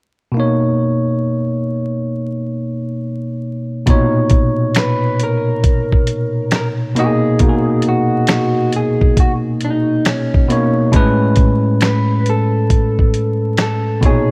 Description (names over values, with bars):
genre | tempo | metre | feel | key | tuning
lo-fi hip hop | 68 BPM | 4/4 | swing 64% on 16ths | B major | A4 = 440 Hz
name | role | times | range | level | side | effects
bell-like tine electric piano | accompaniment | 0.3-14.3 s | A2 to D#5 | -18 LUFS | equal | low-pass filter
dusty soul sampler-style drum kit | drums | 3.9-14.3 s | finger snaps, hi-hat, kick drum, snare drum | -17 LUFS | equal | none
electric guitar through a small old amp | melody | 4.8-14.3 s | C#4 to B4 | -23 LUFS | equal | low-pass filter, tape echo
room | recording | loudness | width
light reverb, digital ambience | vinyl crackle | -16 LUFS | mono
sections
0.3-3.9 A section; 3.9-14.3 B section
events
none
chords
0.3 Bmaj9; 10.9 Amaj9